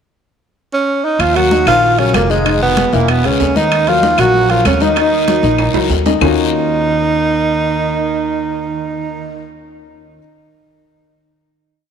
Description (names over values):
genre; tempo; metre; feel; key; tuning
Afro-Cuban jazz; 192 BPM; 4/4; straight; Eb minor; A4 = 438 Hz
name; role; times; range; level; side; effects
breathy tenor saxophone; melody; 0.7-9.5 s; Ab3 to Gb4; -15 LUFS; right 2 dB; none
breathy baritone saxophone; second line; 1.2-9.5 s; Ab2 to Gb3; -21 LUFS; right 11 dB; none
upright bass; bass; 1.2-10.2 s; Fb1 to Eb2; -19 LUFS; left 1 dB; none
claves; percussion; 1.2-6.3 s; none; -25 LUFS; left 15 dB; none
congas; percussion; 1.2-6.3 s; none; -23 LUFS; left 1 dB; none
guiro; percussion; 1.2-6.3 s; none; -28 LUFS; left 14 dB; none
timbales; percussion; 1.2-6.3 s; none; -23 LUFS; right 13 dB; none
dark baby grand piano; accompaniment; 1.4-10.2 s; Eb3 to Fb5; -18 LUFS; left 12 dB; none
room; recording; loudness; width
moderate plate reverb, RT60 3.1 s; 1960s-style stereo with parts hard left and right; -11 LUFS; side -7 dB against mid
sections
0.0-1.2 pickup bar; 1.2-6.2 A section; 6.2-8.7 final chord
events
drum fill 5.6-6.2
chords
0.0 N.C.; 1.2 Ebmadd9; 2.5 Fm7b5; 3.1 E; 3.7 Ebmadd9; 6.2 Ebm9